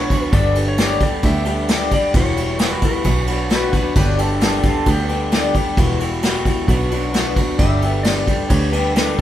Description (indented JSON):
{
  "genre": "folk rock and heartland rock",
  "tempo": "132 BPM",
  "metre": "4/4",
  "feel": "straight",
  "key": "unclear",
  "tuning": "A4 = 440 Hz",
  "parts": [
    { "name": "clean lap steel guitar", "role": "melody", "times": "0.0-3.5, 7.6-9.2 s", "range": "B4 to E5", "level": "-25 LUFS", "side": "left 1 dB", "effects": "none" },
    { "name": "picked twelve-string acoustic guitar", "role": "accompaniment", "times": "0.0-9.2 s", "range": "E2 to G4", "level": "-24 LUFS", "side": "left 6 dB", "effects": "none" },
    { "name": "electric guitar through a small old amp", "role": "riff", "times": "0.0-9.2 s", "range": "E2 to G4", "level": "-23 LUFS", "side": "right 2 dB", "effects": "spring reverb" },
    { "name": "picked electric bass", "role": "bass", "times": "0.0-9.2 s", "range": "E1 to D2", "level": "-21 LUFS", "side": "equal", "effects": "none" },
    { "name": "soft brush drum kit", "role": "drums", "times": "0.1-9.2 s", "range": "crash cymbal, kick drum, ride cymbal, snare drum", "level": "-19 LUFS", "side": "equal", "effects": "none" },
    { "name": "bowl-back mandolin", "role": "second line", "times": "3.5-5.1 s", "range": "B3 to B4", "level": "-26 LUFS", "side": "right 4 dB", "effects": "none" }
  ],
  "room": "light reverb",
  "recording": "band playing live in one room",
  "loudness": "-15 LUFS",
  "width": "side -12 dB against mid",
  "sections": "0.0-9.2 A section",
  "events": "none",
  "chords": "0.3 G; 2.1 Emadd9; 3.1 Bm; 4.0 G; 5.8 Emadd9; 6.7 Bm; 7.6 G"
}